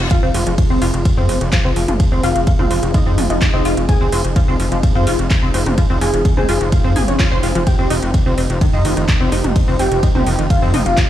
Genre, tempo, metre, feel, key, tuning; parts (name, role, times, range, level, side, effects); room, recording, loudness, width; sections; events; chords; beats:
melodic techno; 127 BPM; 4/4; straight; F minor; A4 = 435 Hz
dark analog pad; sustained chords; 0.0-11.1 s; C4 to Ab4; -25 LUFS; equal; chorus, sidechain pumping
gritty driven synth bass; bass; 0.0-10.9 s; F1 to F2; -18 LUFS; equal; sidechain pumping
expressive synth lead; melody; 0.1-11.0 s; C4 to Ab4; -23 LUFS; equal; ensemble chorus, sidechain pumping, digital delay
glassy wavetable pluck; second line; 0.1-11.0 s; C5 to Ab5; -27 LUFS; equal; chorus, sidechain pumping, ping-pong delay
tight sequenced synth; arpeggios; 0.1-10.8 s; Eb3 to C6; -23 LUFS; equal; chorus, sidechain pumping, ping-pong delay
electronic kick drum; drums; 0.1-11.1 s; -15 LUFS; equal
house drum kit; drums; 0.1-11.1 s; handclaps, hi-hat, ride cymbal, toms; -24 LUFS; right 1 dB
little or no reverb; played on a big sound system in a bare room, stone room reverb; -13 LUFS; side -12 dB against mid
0.0-11.1 A section
0.1 Fm; 7.7 Cm/F
| 0.11 0.58 1.05 1.53 | 2.00 2.47 2.94 3.42 | 3.89 4.36 4.83 5.30 | 5.78 6.25 6.72 7.20 | 7.67 8.14 8.61 9.09 | 9.56 10.03 10.50 10.97